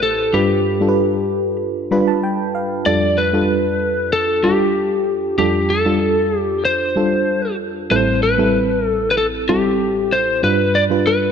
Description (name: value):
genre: pop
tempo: 95 BPM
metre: 4/4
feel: straight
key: unclear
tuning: A4 = 440 Hz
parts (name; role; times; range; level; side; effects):
- lightly driven lead guitar; melody; 0.0-11.3 s; G4 to D5; -17 LUFS; left 2 dB; none
- FM electric piano with auto-pan; accompaniment; 0.0-11.3 s; A1 to B5; -18 LUFS; right 2 dB; none
room: moderate lush hall reverb, RT60 2.3 s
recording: dark, warm production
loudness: -15 LUFS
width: side -7 dB against mid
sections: 0.0-11.3 A section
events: FM electric piano fill 1.6-2.9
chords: 0.3 G7; 2.9 F69; 7.9 Am7; 10.4 G7